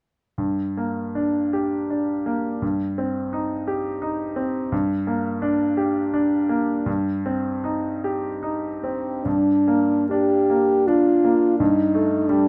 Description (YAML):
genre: classical, romantic duo for French horn and grand piano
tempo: 68-88 BPM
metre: 3/4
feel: rubato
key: G minor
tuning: A4 = 440 Hz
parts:
  - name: bright concert grand piano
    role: accompaniment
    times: 0.4-12.5 s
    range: G2 to G4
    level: -24 LUFS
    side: equal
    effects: none
  - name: warm French horn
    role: melody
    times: 8.8-12.5 s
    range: C4 to G4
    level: -21 LUFS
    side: equal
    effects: none
room: moderate studio ambience, RT60 0.5 s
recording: none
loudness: -22 LUFS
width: mono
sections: 0.4-9.3 A section; 9.3-12.5 B section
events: none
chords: 0.4 Gm; 2.6 Cm/G; 4.7 Gm; 6.9 Cm/G; 9.3 Gm; 11.6 A7(b5, no3)/G